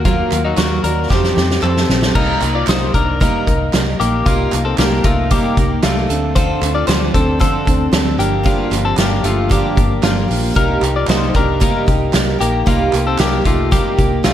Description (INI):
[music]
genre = jangly indie pop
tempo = 114 BPM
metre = 4/4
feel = straight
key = unclear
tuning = A4 = 440 Hz
[part]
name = picked steel-string acoustic guitar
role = accompaniment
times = 0.0-14.3 s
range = G2 to Bb4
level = -20 LUFS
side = right 5 dB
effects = none
[part]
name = twelve-string electric guitar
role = arpeggios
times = 0.0-14.3 s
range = Gb3 to D5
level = -19 LUFS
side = left 6 dB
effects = warbly pitch drift, slapback echo
[part]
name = vintage muted fingered electric bass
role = bass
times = 0.0-14.3 s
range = G1 to F2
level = -20 LUFS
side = equal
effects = none
[part]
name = loose indie drum kit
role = drums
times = 0.0-14.3 s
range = crash cymbal, hi-hat, kick drum, snare drum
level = -17 LUFS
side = equal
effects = none
[part]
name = group handclap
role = percussion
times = 0.3-14.3 s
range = none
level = -32 LUFS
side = right 8 dB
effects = none
[sound]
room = moderate lush hall reverb, RT60 2.6 s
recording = big arena sound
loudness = -13 LUFS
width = side -11 dB against mid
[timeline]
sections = 0.0-2.2 A section; 2.2-14.3 B section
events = drum fill 1.1-2.2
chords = 0.0 Ebm; 1.1 Fadd9; 2.2 Cm7; 6.1 Dm7; 8.2 Gm7; 10.6 Cm7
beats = | 0.05 0.58 1.10 1.63 | 2.16 2.68 3.21 3.73 | 4.26 4.78 5.31 5.83 | 6.36 6.88 7.41 7.94 | 8.46 8.99 9.51 10.04 | 10.56 11.09 11.62 12.14 | 12.67 13.19 13.72 14.24